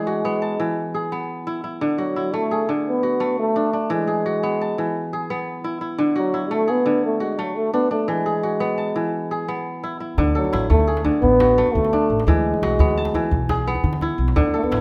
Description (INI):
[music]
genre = west african traditional, West African string and xylophone music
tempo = 115 BPM (dotted quarters)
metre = 12/8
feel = straight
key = unclear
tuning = A4 = 445 Hz
[part]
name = trombone with bucket mute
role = melody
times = 0.0-14.8 s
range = F#3 to B3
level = -24 LUFS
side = equal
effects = none
[part]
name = kora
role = arpeggios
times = 0.0-14.8 s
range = D3 to A5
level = -26 LUFS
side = equal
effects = none
[part]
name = upright bass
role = bass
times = 10.2-14.8 s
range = A1 to D3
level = -25 LUFS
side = equal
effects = none
[part]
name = djembe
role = percussion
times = 10.2-14.8 s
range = none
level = -28 LUFS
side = equal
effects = none
[sound]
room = light reverb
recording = none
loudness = -21 LUFS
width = mono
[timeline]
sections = 0.0-10.2 A section; 10.2-14.8 A section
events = none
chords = 0.0 E; 1.8 D; 3.9 E; 6.0 D; 8.1 E; 10.2 D; 12.3 E